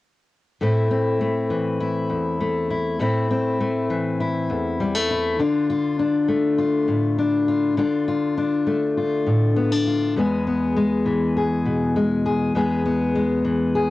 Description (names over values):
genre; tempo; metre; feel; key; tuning
folk; 100 BPM; 4/4; straight; A minor; A4 = 440 Hz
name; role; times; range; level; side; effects
fingerpicked steel-string acoustic guitar; solo; 0.6-13.9 s; E2 to G#4; -19 LUFS; left 2 dB; cassette tape
room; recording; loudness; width
moderate booth ambience, RT60 0.2 s; home recording on cassette; -19 LUFS; side -16 dB against mid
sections
0.6-13.9 A section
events
none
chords
0.6 Am; 5.4 Dm; 10.2 E